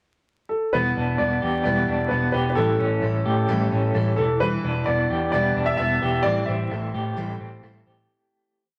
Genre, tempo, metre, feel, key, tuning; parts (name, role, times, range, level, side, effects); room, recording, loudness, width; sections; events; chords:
indie pop; 130 BPM; 4/4; straight; E minor; A4 = 441 Hz
warm upright piano; melody; 0.5-6.9 s; A4 to E5; -28 LUFS; equal
picked steel-string acoustic guitar; accompaniment; 0.7-8.6 s; A2 to C5; -32 LUFS; equal
electric guitar through a small old amp; arpeggios; 0.7-8.6 s; E3 to G4; -27 LUFS; equal; tremolo
vintage muted fingered electric bass; bass; 0.7-8.1 s; E1 to A2; -28 LUFS; equal
wet studio reverb, RT60 0.9 s; vinyl crackle; -23 LUFS; mono
0.0-0.7 pickup bar; 0.7-8.1 verse
fade-out 6.3-8.1
0.0 N.C.; 0.7 Em7; 2.6 A7; 4.2 Em7; 6.3 Am7